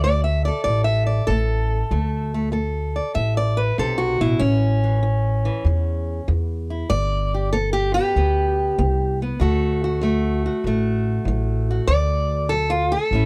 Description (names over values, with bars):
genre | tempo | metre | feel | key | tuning
acoustic country blues, solo or duo | 96 BPM | 4/4 | swing 68% on 8ths | D major | A4 = 439 Hz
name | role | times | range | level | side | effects
fingerpicked steel-string acoustic guitar | melody | 0.0-13.3 s | A2 to E5 | -24 LUFS | equal | none
upright bass | bass | 0.0-13.3 s | G1 to E2 | -24 LUFS | equal | none
room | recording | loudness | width
moderate booth ambience, RT60 0.2 s | dark, warm production | -21 LUFS | mono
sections
0.0-13.3 A section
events
steel-string acoustic guitar solo 0.0-13.3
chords
0.0 D5; 4.4 A; 6.9 G; 9.4 D